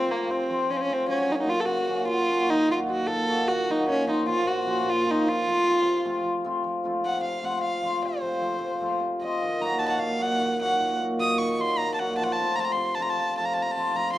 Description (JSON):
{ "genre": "balkan folk", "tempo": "303 BPM (eighths)", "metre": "7/8", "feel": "straight", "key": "F phrygian dominant", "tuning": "A4 = 441 Hz", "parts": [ { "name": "dark violin", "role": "melody", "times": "0.0-14.2 s", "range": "Bb3 to Eb6", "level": "-25 LUFS", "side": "equal", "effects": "none" }, { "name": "cimbalom", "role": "accompaniment", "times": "0.0-14.2 s", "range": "Bb2 to Gb4", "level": "-27 LUFS", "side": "left 1 dB", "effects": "none" } ], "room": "moderate recital hall reverb, RT60 1.7 s", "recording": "dark, warm production", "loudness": "-23 LUFS", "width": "side -14 dB against mid", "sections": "0.0-6.7 A section; 6.7-14.2 B section", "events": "violin solo 6.7-14.2", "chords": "0.0 F; 1.1 Gb; 2.5 Ebm; 3.9 Bbm; 5.3 F; 9.4 Ebm; 12.2 F" }